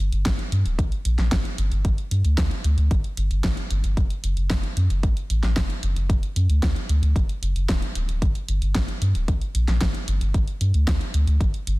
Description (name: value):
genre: synthwave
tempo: 113 BPM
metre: 4/4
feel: straight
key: G harmonic minor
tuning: A4 = 437 Hz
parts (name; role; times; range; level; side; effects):
- round analog bass; bass; 0.0-11.8 s; D1 to G2; -21 LUFS; equal; none
- pop drum kit; drums; 0.1-11.8 s; hi-hat, snare drum; -30 LUFS; equal; none
- electronic kick drum; drums; 0.3-11.5 s; none; -24 LUFS; equal; none
room: little or no reverb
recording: dense, heavily limited modern master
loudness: -20 LUFS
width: side -21 dB against mid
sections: 0.0-11.8 A section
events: none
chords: none